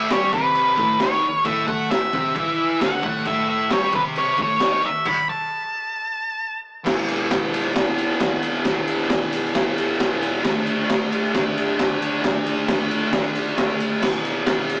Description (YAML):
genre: garage rock duo or trio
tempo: 134 BPM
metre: 4/4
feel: straight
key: unclear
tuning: A4 = 440 Hz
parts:
  - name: octave-fuzz lead guitar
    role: melody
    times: 0.0-6.6 s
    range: B4 to B5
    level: -23 LUFS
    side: equal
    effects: distortion, analog delay
  - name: thick fuzz guitar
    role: riff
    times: 0.0-14.8 s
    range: E2 to A4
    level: -26 LUFS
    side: equal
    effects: distortion
  - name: raw garage drum kit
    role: drums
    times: 0.1-14.8 s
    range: crash cymbal, kick drum, ride cymbal, snare drum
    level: -25 LUFS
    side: equal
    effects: none
room: light reverb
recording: rough rehearsal-room recording, tube saturation, small speaker sound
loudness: -21 LUFS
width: mono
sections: 0.0-6.9 A section; 6.9-14.8 B section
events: stop 5.1-6.9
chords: 0.0 A; 6.9 E5; 10.4 D5; 14.0 E5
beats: 0.11 0.56 1.01 | 1.46 1.91 2.36 2.81 | 3.26 3.71 4.16 4.61 | 5.06 5.51 5.96 6.41 | 6.86 7.31 7.76 8.21 | 8.66 9.11 9.55 10.00 | 10.45 10.90 11.35 11.79 | 12.24 12.69 13.13 13.58 | 14.02 14.47